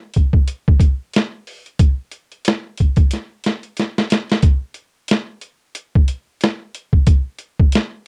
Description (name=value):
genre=R&B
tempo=91 BPM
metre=4/4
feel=swing 58% on 16ths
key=none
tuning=none
part: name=boom bap sampler-style drum kit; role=drums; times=0.1-7.9 s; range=hi-hat, kick drum, snare drum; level=-16 LUFS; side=equal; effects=none
room=little or no reverb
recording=dry, close 1970s-style studio recording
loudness=-18 LUFS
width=mono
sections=0.0-4.4 A section; 4.4-8.1 B section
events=drum fill 3.1-4.4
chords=none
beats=0.47 1.14 | 1.79 2.45 3.11 3.77 | 4.43 5.09 5.75 6.41 | 7.07 7.73